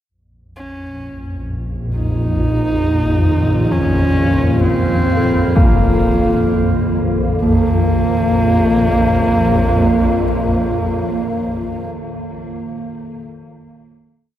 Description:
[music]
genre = dark ambient drone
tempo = free time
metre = none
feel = none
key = Bb harmonic minor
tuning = A4 = 437 Hz
[part]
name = deep dark ambient pad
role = sustained chords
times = 2.0-11.9 s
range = Bb3 to F5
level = -22 LUFS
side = equal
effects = chorus, built-in reverb
[part]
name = swarming drone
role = drone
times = 1.0-11.9 s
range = Bb1 to F2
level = -17 LUFS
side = equal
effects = built-in reverb
[part]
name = dark horsehead fiddle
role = melody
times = 0.6-11.9 s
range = Bb3 to Eb4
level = -20 LUFS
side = equal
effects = tape echo
[part]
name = quartz singing bowl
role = arpeggios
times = 3.2-12.2 s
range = Eb3 to A4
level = -23 LUFS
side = right 1 dB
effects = tape echo
[part]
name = impact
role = percussion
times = 5.6-5.8 s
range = none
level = -18 LUFS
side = equal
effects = low-pass filter on sfx
[sound]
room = wet cathedral reverb, RT60 4.7 s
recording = none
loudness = -13 LUFS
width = side -11 dB against mid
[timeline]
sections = 0.1-7.4 A section; 7.4-11.1 final chord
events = fade-in on ambient pad 0.1-7.4; fade-in on singing bowl 0.1-7.4; fade-in on horsehead fiddle 0.1-7.4; filter sweep on synth drone 0.1-7.4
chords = 0.1 Bbm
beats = free time

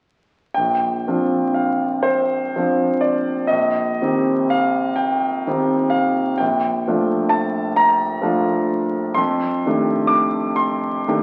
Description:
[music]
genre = classical, impressionist solo piano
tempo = 38-44 BPM (dotted quarters)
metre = 6/8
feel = rubato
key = Bb major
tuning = A4 = 445 Hz
[part]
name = clear concert grand piano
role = solo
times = 0.5-11.2 s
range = Bb1 to D6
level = -19 LUFS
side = equal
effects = none
[sound]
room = wet recital hall reverb, RT60 1.4 s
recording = very old 78 rpm record, vinyl crackle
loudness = -19 LUFS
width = mono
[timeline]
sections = 0.5-11.2 A section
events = none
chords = 0.5 Bbadd9; 3.5 Cm7/Bb; 6.4 Bbmaj7; 9.2 F13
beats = | 0.55 2.07 | 3.52 5.01 | 6.41 7.78 | 9.18 10.60

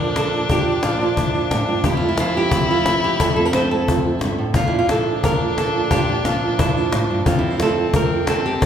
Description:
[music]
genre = flamenco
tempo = 177 BPM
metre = 4/4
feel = straight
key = F major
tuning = A4 = 438 Hz
[part]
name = flamenco guitar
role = melody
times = 0.0-8.7 s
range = F2 to C5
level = -21 LUFS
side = right 1 dB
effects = none
[part]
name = clear violin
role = second line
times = 0.0-8.7 s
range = C4 to E4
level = -24 LUFS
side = left 3 dB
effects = none
[part]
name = flamenco guitar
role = stabs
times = 0.0-8.7 s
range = F2 to F4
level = -24 LUFS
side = right 5 dB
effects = none
[part]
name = cajon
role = percussion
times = 0.2-8.7 s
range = none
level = -22 LUFS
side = left 2 dB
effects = none
[sound]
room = wet recital hall reverb, RT60 1.7 s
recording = recorded in a church or concert hall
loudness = -16 LUFS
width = side -8 dB against mid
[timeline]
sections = 0.0-8.7 A section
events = none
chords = 0.0 Bb; 1.9 F; 4.6 Bb; 7.3 F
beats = 0.17 | 0.50 0.84 1.18 1.52 | 1.85 2.19 2.53 2.87 | 3.21 3.54 3.88 4.22 | 4.56 4.90 5.24 5.58 | 5.92 6.25 6.59 6.93 | 7.27 7.61 7.95 8.29 | 8.63

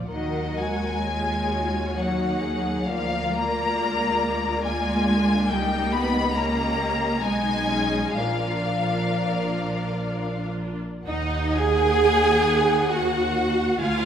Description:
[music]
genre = classical, slow romantic movement for string orchestra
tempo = 58-72 BPM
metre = 3/4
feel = rubato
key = Eb minor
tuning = A4 = 440 Hz
[part]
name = warm symphonic violin section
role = second line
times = 0.0-14.1 s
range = F4 to Ab5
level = -30 LUFS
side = left 2 dB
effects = none
[part]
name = bright symphonic viola section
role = accompaniment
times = 0.0-14.1 s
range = F3 to Ab4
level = -26 LUFS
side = right 2 dB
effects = none
[part]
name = warm symphonic violin section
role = melody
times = 0.1-14.1 s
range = Eb5 to Cb6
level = -28 LUFS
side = left 4 dB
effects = none
[part]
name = rich symphonic cello section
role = bass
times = 0.1-14.1 s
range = D2 to Cb4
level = -28 LUFS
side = right 1 dB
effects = none
[part]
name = rich symphonic double bass section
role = bass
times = 0.1-14.1 s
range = Bb1 to Eb2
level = -30 LUFS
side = right 2 dB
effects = none
[sound]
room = wet scoring stage reverb, RT60 1.4 s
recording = none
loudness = -21 LUFS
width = side -8 dB against mid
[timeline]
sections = 0.0-11.1 A section; 11.1-14.1 A section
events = none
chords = 0.1 Ebm; 2.9 Bb7/D; 5.5 Eb7/Db; 7.2 Abm/Cb; 8.2 Bb; 11.1 Ebm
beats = | 0.12 1.09 1.98 | 2.89 3.81 4.66 | 5.51 6.36 7.24 | 8.17 9.12 10.07 | 11.06 12.03 12.93 | 13.81

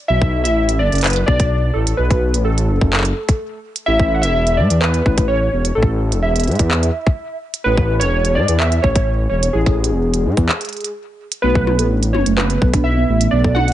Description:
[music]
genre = IDM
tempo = 127 BPM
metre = 4/4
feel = straight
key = unclear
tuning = A4 = 440 Hz
[part]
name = warbly lo-fi synth keys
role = melody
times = 0.1-13.7 s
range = G#4 to F#5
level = -20 LUFS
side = equal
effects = chorus, vintage 12-bit sampler grit, digital delay
[part]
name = dark detuned saw bass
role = bass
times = 0.1-13.7 s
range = E1 to A2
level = -16 LUFS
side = equal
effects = none
[part]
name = electronic kick drum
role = drums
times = 0.2-13.5 s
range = none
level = -15 LUFS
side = equal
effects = small room ambience
[part]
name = glitchy drum kit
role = drums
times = 0.5-13.7 s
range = handclaps, hi-hat, toms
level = -21 LUFS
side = equal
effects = small room ambience
[part]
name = harp-like synth pluck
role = arpeggios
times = 11.4-13.6 s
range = A3 to A4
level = -20 LUFS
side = right 4 dB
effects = chorus, ping-pong delay
[sound]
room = digital ambience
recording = nothing above 10.4 kHz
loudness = -14 LUFS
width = side -12 dB against mid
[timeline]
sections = 0.0-13.7 A section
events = break 10.5-11.4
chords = 0.0 Bm7; 3.9 Amaj7; 11.4 Bm7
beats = | 0.10 0.57 1.04 1.51 | 1.99 2.46 2.93 3.40 | 3.88 4.35 4.82 5.29 | 5.77 6.24 6.71 7.18 | 7.66 8.13 8.60 9.07 | 9.55 10.02 10.49 10.96 | 11.44 11.91 12.38 12.85 | 13.33

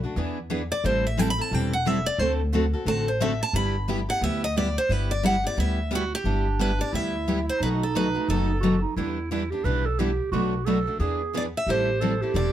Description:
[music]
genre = acoustic string swing (jazz manouche)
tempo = 177 BPM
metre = 4/4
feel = swing 60% on 8ths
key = G major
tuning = A4 = 441 Hz
[part]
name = picked steel-string acoustic guitar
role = accompaniment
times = 0.0-12.5 s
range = B2 to A4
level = -28 LUFS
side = left 4 dB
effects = none
[part]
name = upright bass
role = bass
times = 0.0-12.5 s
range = E1 to E2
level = -28 LUFS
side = equal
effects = none
[part]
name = picked steel-string acoustic guitar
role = accompaniment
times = 0.2-12.5 s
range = B2 to B4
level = -31 LUFS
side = right 6 dB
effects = none
[part]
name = picked steel-string acoustic guitar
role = melody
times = 0.7-8.8, 11.4-12.5 s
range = F#4 to B5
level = -27 LUFS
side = right 1 dB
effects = none
[part]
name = growling clarinet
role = second line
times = 6.2-12.5 s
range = D4 to B4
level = -28 LUFS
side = right 6 dB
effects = none
[sound]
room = light reverb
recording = none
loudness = -22 LUFS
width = side -11 dB against mid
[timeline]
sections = 0.0-6.3 A section; 6.3-12.5 B section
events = steel-string acoustic guitar solo 0.0-6.3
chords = 0.2 E7; 0.8 Am7; 2.2 D7; 3.5 G6; 7.6 B7; 9.0 Em7; 10.3 Bm7; 11.0 E7; 11.7 Am7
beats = 0.17 0.51 | 0.84 1.18 1.52 1.86 | 2.19 2.53 2.87 3.21 | 3.54 3.88 4.22 4.56 | 4.90 5.24 5.58 5.92 | 6.25 6.59 6.93 7.27 | 7.61 7.95 8.29 8.63 | 8.97 9.31 9.65 9.98 | 10.32 10.66 11.00 11.34 | 11.68 12.01 12.35

